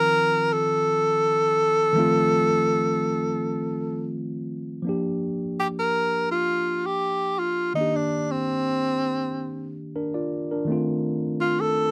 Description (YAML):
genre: soul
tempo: 83 BPM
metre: 4/4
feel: swing 54% on 16ths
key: Bb major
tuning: A4 = 440 Hz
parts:
  - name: breathy tenor saxophone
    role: melody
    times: 0.0-11.9 s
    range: C4 to Bb4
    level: -24 LUFS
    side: equal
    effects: none
  - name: mellow tine electric piano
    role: accompaniment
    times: 0.0-11.9 s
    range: Eb3 to D5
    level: -29 LUFS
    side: equal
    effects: none
room: little or no reverb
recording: dry, close 1970s-style studio recording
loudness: -24 LUFS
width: mono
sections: 0.0-4.9 A section; 4.9-11.9 B section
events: none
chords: 0.0 F7; 4.9 Bb6; 7.8 Ebmaj7; 10.7 F7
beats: 0.51 1.23 | 1.96 2.68 3.41 4.14 | 4.86 5.59 6.32 7.04 | 7.77 8.50 9.22 9.95 | 10.68 11.41